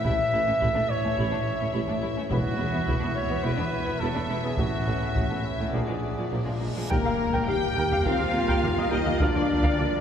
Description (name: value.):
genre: cinematic, epic orchestral film score.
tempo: 105 BPM.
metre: 4/4.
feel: straight.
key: A major.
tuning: A4 = 441 Hz.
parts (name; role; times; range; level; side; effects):
warm symphonic violin section; melody; 0.0-10.0 s; Bb4 to G5; -34 LUFS; left 4 dB; none.
rich symphonic violin section; second line; 0.0-10.0 s; Ab3 to G5; -36 LUFS; left 2 dB; none.
warm French horn section; sustained chords; 0.0-10.0 s; E3 to G4; -31 LUFS; left 2 dB; none.
warm trumpet; stabs; 0.0-10.0 s; Bb3 to E5; -30 LUFS; right 1 dB; none.
warm symphonic cello section; bass; 0.0-10.0 s; E2 to C4; -34 LUFS; right 2 dB; none.
dark studio viola section; accompaniment; 0.1-9.8 s; F3 to G5; -34 LUFS; equal; none.
mellow tuba; bass; 0.1-9.8 s; E1 to Eb2; -35 LUFS; right 2 dB; none.
warm symphonic double bass section; bass; 0.1-9.8 s; E1 to Eb2; -33 LUFS; right 1 dB; none.
taiko ensemble; drums; 0.1-10.0 s; none; -31 LUFS; equal; none.
timpani; percussion; 2.3-5.4 s; E2 to A2; -38 LUFS; left 1 dB; none.
reverse cymbal and impact; sound effects; 6.5-9.2 s; none; -40 LUFS; equal; none.
mellow trombone section; sustained chords; 6.9-10.0 s; F3 to Bb3; -37 LUFS; right 3 dB; none.
mellow woodwind section; sustained chords; 6.9-10.0 s; Bb3 to F5; -38 LUFS; equal; none.
room: wet cathedral reverb, RT60 5.7 s.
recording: recorded in a church or concert hall.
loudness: -23 LUFS.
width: side -8 dB against mid.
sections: 0.0-6.9 A section; 6.9-10.0 B section.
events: reverse cymbal 6.5-6.9; impact 6.9-9.2.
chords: 0.0 A; 2.3 Esus2; 4.6 A6; 5.7 Bb7; 6.9 Ebadd9; 9.2 Bb/D.